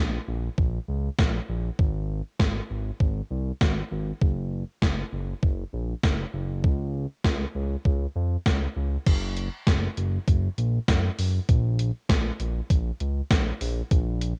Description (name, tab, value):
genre	synth-pop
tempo	99 BPM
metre	4/4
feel	straight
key	Bb minor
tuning	A4 = 440 Hz
part	smooth synth bass	bass	0.0-14.3 s	Gb1 to F2	-30 LUFS	equal	none
part	gated 80s digital drum machine	drums	0.6-14.4 s	crash cymbal, hi-hat, kick drum, snare drum	-26 LUFS	equal	gated reverb, gated reverb snare, cassette tape
room	digital ambience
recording	home recording on cassette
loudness	-26 LUFS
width	mono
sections	0.0-9.1 A section; 9.1-14.4 B section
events	none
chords	none